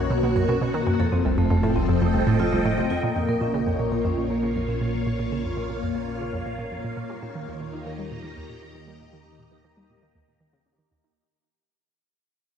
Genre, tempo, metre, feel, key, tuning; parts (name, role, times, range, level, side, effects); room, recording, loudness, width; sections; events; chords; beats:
ambient, sequencer-driven space music; 118 BPM; 4/4; straight; Bb dorian from 3.0 s; A4 = 440 Hz
phased string machine; sustained chords; 0.0-11.2 s; Bb2 to Bb5; -27 LUFS; equal; ensemble chorus, phaser
analog pluck; riff; 0.0-11.1 s; C2 to G3; -26 LUFS; right 1 dB; chorus, ping-pong delay
round analog bass; bass; 0.0-11.1 s; F1 to Eb2; -35 LUFS; equal
vibraphone with medium mallets; arpeggios; 0.1-11.2 s; F3 to Bb4; -29 LUFS; left 2 dB; auto-pan, ping-pong delay
light reverb; -22 LUFS; side -8 dB against mid
0.0-3.0 A section; 3.0-11.2 B section
fade-out on vibraphone 3.0-11.2; fade-out on analog synth bass 3.0-11.2; fade-out 3.0-11.2; filter sweep on synth arpeggio sound 3.0-11.2
0.0 B; 1.0 F7; 3.0 Bbm; 7.1 Eb
0.49 | 1.00 1.51 2.01 2.52 | 3.03 3.54 4.05 4.56 | 5.07 5.57 6.08 6.59 | 7.10 7.61 8.12 8.62 | 9.13 9.64 10.15 10.66